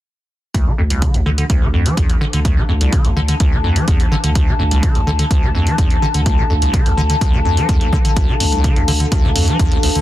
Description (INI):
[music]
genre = acid house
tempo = 126 BPM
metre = 4/4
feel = straight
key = D minor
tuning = A4 = 440 Hz
[part]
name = liquid acid bass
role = riff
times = 0.5-10.0 s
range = C2 to F3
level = -18 LUFS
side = equal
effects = lush chorus, cassette tape, sidechain pumping, digital delay
[part]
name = electronic hi-hat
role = drums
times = 0.5-10.0 s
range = none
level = -23 LUFS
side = right 1 dB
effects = studio reverb
[part]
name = electronic kick drum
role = drums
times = 0.5-9.7 s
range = none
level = -16 LUFS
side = equal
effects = studio reverb
[part]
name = warbly tape-like pad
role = texture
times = 0.5-10.0 s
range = D4 to A5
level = -23 LUFS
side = left 3 dB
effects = chorus, built-in reverb, sidechain pumping
[part]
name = saturated sub bass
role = bass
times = 0.8-10.0 s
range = A1 to D2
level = -19 LUFS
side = equal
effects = sidechain pumping
[sound]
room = light reverb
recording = dense, heavily limited modern master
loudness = -13 LUFS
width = side -14 dB against mid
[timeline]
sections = 0.5-10.0 A section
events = none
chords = 0.5 Dm